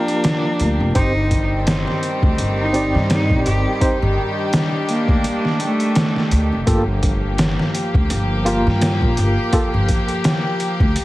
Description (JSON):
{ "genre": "trip hop", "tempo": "84 BPM", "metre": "4/4", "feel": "swing 56% on 16ths", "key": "G minor", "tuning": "A4 = 440 Hz", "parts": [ { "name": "warm cello", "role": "melody", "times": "0.0-6.6 s", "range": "A3 to G4", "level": "-23 LUFS", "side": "equal", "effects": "tape echo" }, { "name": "tine electric piano", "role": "accompaniment", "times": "0.0-9.7 s", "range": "Bb3 to D5", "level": "-23 LUFS", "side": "equal", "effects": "tremolo, vintage 12-bit sampler grit, tape echo" }, { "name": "rich chamber string section", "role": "sustained chords", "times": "0.0-11.0 s", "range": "Eb3 to G4", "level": "-23 LUFS", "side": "left 1 dB", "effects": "none" }, { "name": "trip hop sampler-style drum kit", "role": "drums", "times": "0.1-11.0 s", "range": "hi-hat, kick drum, snare drum", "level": "-19 LUFS", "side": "equal", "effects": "overdrive" }, { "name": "upright bass", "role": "bass", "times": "0.6-10.9 s", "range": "F1 to G2", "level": "-20 LUFS", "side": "equal", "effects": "none" } ], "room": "light reverb, small room ambience", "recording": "heavily compressed radio sound, multiband compression, vinyl crackle", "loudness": "-16 LUFS", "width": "side -17 dB against mid", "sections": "0.0-6.7 A section; 6.7-11.0 B section", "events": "none", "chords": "0.0 Gm7; 1.0 Cm/G; 6.7 Gm7" }